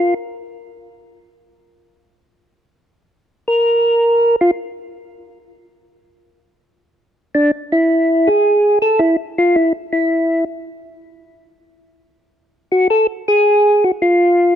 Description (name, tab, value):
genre	jazz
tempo	108 BPM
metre	4/4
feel	swing 68% on 8ths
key	unclear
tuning	A4 = 440 Hz
part	percussive tonewheel organ	solo	0.0-0.1, 3.5-14.6 s	D4 to Bb4	-13 LUFS	equal	slow rotary speaker
room	digital ambience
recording	dry, close 1970s-style studio recording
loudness	-13 LUFS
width	side -9 dB against mid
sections	0.0-7.3 A section; 7.3-14.6 B section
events	tonewheel organ solo 0.0-7.3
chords	none